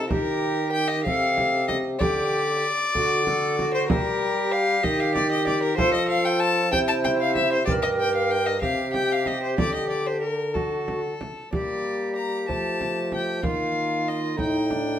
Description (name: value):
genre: classical, renaissance-style consort dance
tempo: 63 BPM (dotted quarters)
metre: 6/8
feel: straight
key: G minor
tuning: A4 = 440 Hz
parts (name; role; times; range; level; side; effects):
- rich violin; melody; 0.0-15.0 s; A4 to Bb5; -25 LUFS; left 3 dB; none
- tenor recorder; second line; 0.0-15.0 s; D4 to C5; -28 LUFS; right 2 dB; none
- clear trombone; accompaniment; 0.0-15.0 s; A3 to G4; -31 LUFS; left 2 dB; none
- dark bassoon; bass; 0.0-15.0 s; G2 to G3; -28 LUFS; right 1 dB; none
- frame drum; percussion; 0.1-15.0 s; none; -29 LUFS; right 2 dB; none
room: wet stone room reverb, RT60 1.0 s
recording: heard from further back in the room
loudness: -21 LUFS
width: side -10 dB against mid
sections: 0.0-11.5 A section; 11.5-15.0 B section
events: none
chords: 0.1 Eb; 1.1 C5; 2.0 Dsus4; 3.0 D; 3.9 Gm; 4.8 Eb; 5.8 F; 6.7 C; 7.7 Gm; 8.6 C5; 9.6 Dsus4; 10.5 D; 11.5 Gm; 12.5 F; 13.4 Eb5; 14.4 A(b5, no3)